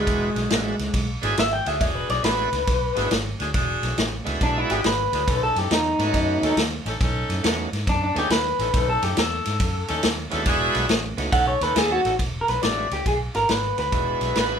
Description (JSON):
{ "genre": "electric blues shuffle", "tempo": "139 BPM", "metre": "4/4", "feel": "swing 66% on 8ths", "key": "E mixolydian", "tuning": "A4 = 440 Hz", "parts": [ { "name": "electric guitar through a small old amp", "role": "melody", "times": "0.0-14.6 s", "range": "G#3 to G5", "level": "-23 LUFS", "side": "equal", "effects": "none" }, { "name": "bright tonewheel organ", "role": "accompaniment", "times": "0.0-14.6 s", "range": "G#3 to A4", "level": "-28 LUFS", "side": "right 4 dB", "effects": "overdrive, slow rotary speaker" }, { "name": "vintage muted fingered electric bass", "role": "bass", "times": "0.0-14.6 s", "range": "E1 to G#2", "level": "-28 LUFS", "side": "equal", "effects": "none" }, { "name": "edgy saxophone section", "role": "stabs", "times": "0.1-12.1 s", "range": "C#4 to A4", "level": "-28 LUFS", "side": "equal", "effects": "slapback echo" }, { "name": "vintage drum kit", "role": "drums", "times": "0.1-14.5 s", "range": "kick drum, ride cymbal, snare drum", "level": "-25 LUFS", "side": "equal", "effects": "none" }, { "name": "warm harmonica", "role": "second line", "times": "14.4-14.6 s", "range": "B4", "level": "-25 LUFS", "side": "right 6 dB", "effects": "overdrive" } ], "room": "moderate studio ambience, RT60 0.5 s", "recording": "band playing live in one room", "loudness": "-20 LUFS", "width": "side -7 dB against mid", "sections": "0.0-12.2 A section; 12.2-14.6 B section", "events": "clean electric guitar solo 0.0-12.2", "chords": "0.0 E9; 5.3 B9; 10.5 E9; 11.3 B9; 12.2 E9" }